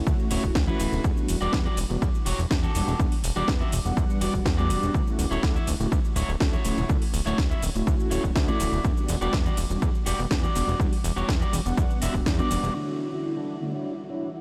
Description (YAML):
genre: filtered disco house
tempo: 123 BPM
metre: 4/4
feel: straight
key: D major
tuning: A4 = 440 Hz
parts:
  - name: mellow synth brass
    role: accompaniment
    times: 0.0-13.7 s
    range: D3 to F#5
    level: -34 LUFS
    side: equal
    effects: chorus, phaser, sidechain pumping, low-pass filter
  - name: fat analog bass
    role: bass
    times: 0.0-12.7 s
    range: D1 to E2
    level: -30 LUFS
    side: equal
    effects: sidechain pumping, low-pass filter
  - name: electronic kick drum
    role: drums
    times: 0.1-12.4 s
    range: none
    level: -28 LUFS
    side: equal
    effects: overdrive
  - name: house drum kit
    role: drums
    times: 0.1-12.9 s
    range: crash cymbal, hi-hat, shaker, snare drum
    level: -36 LUFS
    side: equal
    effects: overdrive, sidechain pumping on hats, low-pass filter on hats, low-pass filter on snare, sidechain pumping on perc, low-pass filter on perc, sidechain pumping on cymbals, low-pass filter on cymbals, low-pass filter on room
  - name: tambourine and congas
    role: percussion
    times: 0.1-12.7 s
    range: none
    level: -42 LUFS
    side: equal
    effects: none
  - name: electric guitar at the edge of break-up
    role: riff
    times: 0.3-14.3 s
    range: D4 to E5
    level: -34 LUFS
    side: equal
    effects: sidechain pumping, low-pass filter
  - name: string machine, full ensemble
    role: sustained chords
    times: 12.8-14.4 s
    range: E4 to F#5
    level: -37 LUFS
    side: equal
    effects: ensemble chorus, vintage 12-bit sampler grit, sidechain pumping, low-pass filter
room: light reverb, digital ambience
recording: faint mains hum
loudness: -25 LUFS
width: mono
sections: 0.0-12.8 A section; 12.8-14.4 B section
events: filter sweep 12.8-14.4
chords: 0.0 Dmaj9; 1.0 Em9; 4.9 Dmaj9; 8.8 Em9; 12.8 Dmaj9